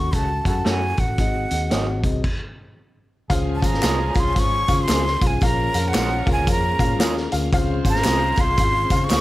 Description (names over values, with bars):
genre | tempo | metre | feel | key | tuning
uptempo 1960s-style soul | 114 BPM | 4/4 | swing 62% on 8ths | Db major | A4 = 440 Hz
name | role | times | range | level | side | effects
breathy jazz flute | melody | 0.0-9.2 s | Gb5 to Db6 | -24 LUFS | right 1 dB | none
dark upright piano | accompaniment | 0.0-9.2 s | Ab2 to Ab5 | -26 LUFS | left 4 dB | none
vintage muted fingered electric bass | bass | 0.0-9.2 s | Ab1 to Db3 | -25 LUFS | equal | none
warm horn section | second line | 0.1-9.2 s | Db3 to C5 | -32 LUFS | right 1 dB | none
vintage drum kit | drums | 0.1-9.2 s | crash cymbal, hi-hat, kick drum, snare drum | -22 LUFS | equal | none
electric guitar through a small old amp | stabs | 0.6-9.2 s | Gb3 to A4 | -30 LUFS | right 4 dB | plate reverb
tonewheel organ | sustained chords | 3.3-9.2 s | Ab3 to F5 | -34 LUFS | equal | slow rotary speaker, chorus vibrato
tambourine and handclaps | percussion | 3.3-9.2 s | none | -33 LUFS | equal | none
room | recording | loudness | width
light reverb | none | -18 LUFS | side -16 dB against mid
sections
0.0-3.3 A section; 3.3-9.2 B section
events
stop 2.2-3.3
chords
0.0 Gbm; 1.2 Ab7; 3.3 Dbmaj7; 5.4 Bbm7; 7.5 Dbmaj7